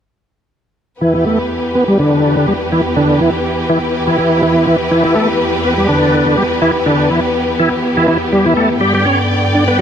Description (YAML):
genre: breakbeat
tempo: 123 BPM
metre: 4/4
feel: swing 55% on 16ths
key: E minor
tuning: A4 = 440 Hz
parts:
  - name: warm symphonic string section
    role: sustained chords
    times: 1.0-9.8 s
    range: E2 to G5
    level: -15 LUFS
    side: left 1 dB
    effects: none
  - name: bright tonewheel organ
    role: riff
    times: 1.0-9.8 s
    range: D3 to D4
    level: -13 LUFS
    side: equal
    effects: chorus vibrato, slow rotary speaker, tube saturation, vintage 12-bit sampler grit, low-pass filter, dub echo
room: moderate lush hall reverb, RT60 2.4 s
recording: none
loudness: -11 LUFS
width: side -8 dB against mid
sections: 1.0-9.8 A section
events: filter sweep on tonewheel organ 1.0-9.8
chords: 1.0 Em; 8.8 G